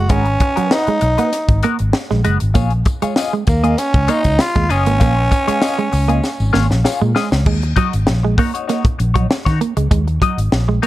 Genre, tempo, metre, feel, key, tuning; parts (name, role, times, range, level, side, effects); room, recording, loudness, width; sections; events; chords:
funk; 98 BPM; 4/4; straight; Eb minor; A4 = 439 Hz
growling tenor saxophone; melody; 0.0-6.9 s; Bb3 to Gb4; -19 LUFS; right 1 dB
semi-hollow electric guitar; riff; 0.0-10.9 s; Gb3 to Bb3; -21 LUFS; right 6 dB
vintage muted fingered electric bass; bass; 0.0-10.8 s; Gb1 to Eb3; -16 LUFS; equal
clean electric guitar; accompaniment; 0.1-10.9 s; Cb4 to Eb5; -23 LUFS; left 8 dB; wah
tight funk drum kit; drums; 0.1-10.9 s; crash cymbal, hi-hat, kick drum, snare drum; -18 LUFS; equal
tambourine; percussion; 2.6-7.5 s; -35 LUFS; left 6 dB
small room ambience; dark, warm production; -13 LUFS; side -15 dB against mid
0.0-7.5 A section; 7.5-10.9 B section
drum fill 6.2-7.5
0.0 Abm9; 2.6 Bbm7; 7.5 Ebm7